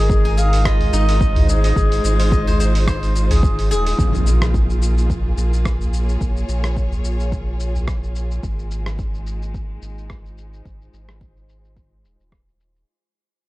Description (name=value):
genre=organic downtempo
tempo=108 BPM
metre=4/4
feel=swing 55% on 16ths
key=Ab major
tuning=A4 = 441 Hz
part: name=mellow clarinet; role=melody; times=0.0-3.4 s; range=Ab4 to F5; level=-26 LUFS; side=left 2 dB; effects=tape echo
part: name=clear studio string section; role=sustained chords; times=0.0-12.9 s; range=Ab3 to Db5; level=-28 LUFS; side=right 1 dB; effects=sidechain pumping, low-pass filter
part: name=steel-string zither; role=arpeggios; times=0.0-6.1 s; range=Eb4 to Ab5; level=-26 LUFS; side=left 2 dB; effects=tape echo
part: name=warm sub bass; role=bass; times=0.0-12.8 s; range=Eb1 to Bb1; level=-19 LUFS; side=equal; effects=sidechain pumping
part: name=dusty soul sampler-style drum kit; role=drums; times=0.1-12.9 s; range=hi-hat, rim click, shaker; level=-29 LUFS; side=equal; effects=low-pass filter on perc, small room ambience, low-pass filter on hats, low-pass filter on snare
part: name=electronic kick drum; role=drums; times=0.1-12.4 s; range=none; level=-22 LUFS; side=equal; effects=overdrive, small room ambience
part: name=udu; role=percussion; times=0.8-7.9 s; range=none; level=-21 LUFS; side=equal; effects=none
part: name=impact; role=sound effects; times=4.0-6.2 s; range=none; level=-26 LUFS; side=equal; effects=none
room=small room ambience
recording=dark, warm production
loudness=-16 LUFS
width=side -18 dB against mid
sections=0.0-4.0 A section; 4.0-12.9 B section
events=fade-out 4.0-12.9; impact 4.0-6.2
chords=0.0 Ab6; 4.0 Bbm7; 8.4 Ab6